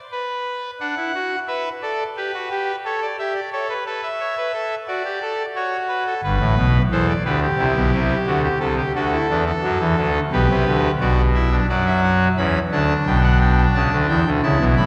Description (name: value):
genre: classical, baroque-style 3-part fugue for pipe organ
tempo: 88 BPM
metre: 4/4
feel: straight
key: unclear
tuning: A4 = 440 Hz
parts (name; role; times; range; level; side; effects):
- pipe organ, trumpet; solo; 0.1-14.9 s; G1 to B5; -20 LUFS; equal; none
room: wet church reverb, RT60 3.0 s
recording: dark, warm production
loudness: -20 LUFS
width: mono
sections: 0.0-14.9 A section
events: none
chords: 0.0 N.C.; 0.8 D; 2.2 Em7 (rootless); 3.5 A; 4.9 D/F#; 6.2 G; 7.6 Am7 (rootless); 9.0 D; 10.3 G/B; 11.7 D/F#; 13.1 Em7/B